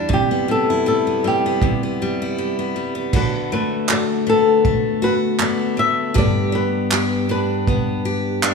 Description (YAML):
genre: acoustic pop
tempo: 79 BPM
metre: 4/4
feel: swing 55% on 16ths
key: unclear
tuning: A4 = 441 Hz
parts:
  - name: picked steel-string acoustic guitar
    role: accompaniment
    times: 0.0-8.5 s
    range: E2 to G4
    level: -20 LUFS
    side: left 2 dB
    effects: none
  - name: flamenco guitar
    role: melody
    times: 0.1-8.5 s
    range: G4 to E5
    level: -21 LUFS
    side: left 2 dB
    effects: none
  - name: unplugged drum kit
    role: drums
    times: 0.1-8.5 s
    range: crash cymbal, handclaps, kick drum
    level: -21 LUFS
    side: right 3 dB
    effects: none
  - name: group handclap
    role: percussion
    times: 3.9-8.5 s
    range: none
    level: -29 LUFS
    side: right 8 dB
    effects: none
room: moderate concert hall reverb, RT60 2.2 s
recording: small room reverb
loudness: -17 LUFS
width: side -5 dB against mid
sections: 0.0-3.1 A section; 3.1-8.5 B section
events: none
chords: 0.1 Cmaj7; 3.1 D6; 6.2 G